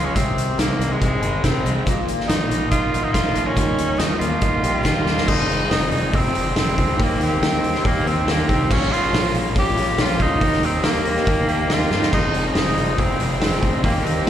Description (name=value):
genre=folk rock and heartland rock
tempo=140 BPM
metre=4/4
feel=straight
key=F minor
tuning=A4 = 438 Hz
part: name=bright tenor saxophone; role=melody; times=0.0-14.3 s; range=Ab3 to G4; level=-23 LUFS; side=equal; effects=plate reverb, slapback echo, tape echo
part: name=picked twelve-string acoustic guitar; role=accompaniment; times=0.0-14.3 s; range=F2 to Ab4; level=-28 LUFS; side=left 3 dB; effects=lush chorus, slapback echo
part: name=raw garage guitar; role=riff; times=0.0-14.3 s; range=F2 to Ab4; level=-24 LUFS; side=right 1 dB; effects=overdrive, slapback echo
part: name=fingered electric bass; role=bass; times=0.0-14.3 s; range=F1 to Eb3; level=-24 LUFS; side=equal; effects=none
part: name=loose indie drum kit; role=drums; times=0.2-14.3 s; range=crash cymbal, hi-hat, kick drum, snare drum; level=-22 LUFS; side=equal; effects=none
room=light reverb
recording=live gig heard through the venue's PA, recital hall reverb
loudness=-17 LUFS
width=side -10 dB against mid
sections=0.0-5.3 A section; 5.3-14.3 B section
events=drum fill 5.1, 11.9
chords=0.2 Ab/C; 1.9 Bbsus4; 3.6 Ebadd9; 5.3 Fm7; 7.0 Eb6; 8.7 Bbm7; 10.4 Eb6; 12.1 Fm7